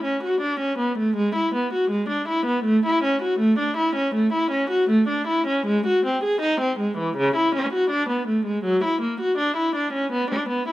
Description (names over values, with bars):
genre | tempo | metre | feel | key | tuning
classical, baroque-style suite movement for unaccompanied viola | 80 BPM | 4/4 | rubato | A major | A4 = 439 Hz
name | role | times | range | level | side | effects
warm viola | solo | 0.0-10.7 s | C#3 to G#4 | -20 LUFS | equal | none
room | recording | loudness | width
light reverb | close, detailed microphones | -20 LUFS | side -15 dB against mid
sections
0.0-10.7 A section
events
none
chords
none